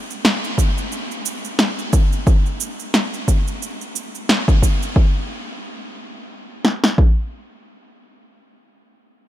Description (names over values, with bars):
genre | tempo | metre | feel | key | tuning
organic downtempo | 89 BPM | 4/4 | swing 57% on 16ths | none | none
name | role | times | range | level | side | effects
electronic shaker and snare drum | drums | 0.1-4.9 s | none | -22 LUFS | equal | none
deep house drum kit | drums | 0.6-7.2 s | kick drum, snare drum | -15 LUFS | equal | none
room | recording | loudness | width
light reverb | none | -16 LUFS | side -13 dB against mid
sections
0.0-5.0 A section; 5.0-7.7 B section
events
none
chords
none